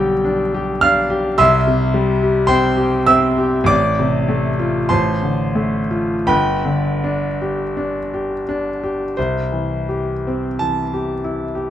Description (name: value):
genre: classical, romantic nocturne for solo piano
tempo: 39-54 BPM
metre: 4/4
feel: rubato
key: C major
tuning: A4 = 435 Hz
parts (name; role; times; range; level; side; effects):
- clear grand piano; solo; 0.0-11.7 s; G1 to G6; -15 LUFS; equal; none
room: moderate large studio reverb, RT60 0.9 s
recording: dark, warm production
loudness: -15 LUFS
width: side -11 dB against mid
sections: 0.0-9.2 A section; 9.2-11.7 B section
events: none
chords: 0.0 G/B; 1.4 C; 3.7 Dm7/A; 6.3 G; 9.2 C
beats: 0.25 1.40 2.52 | 3.70 4.93 6.31 7.79 | 9.17 10.60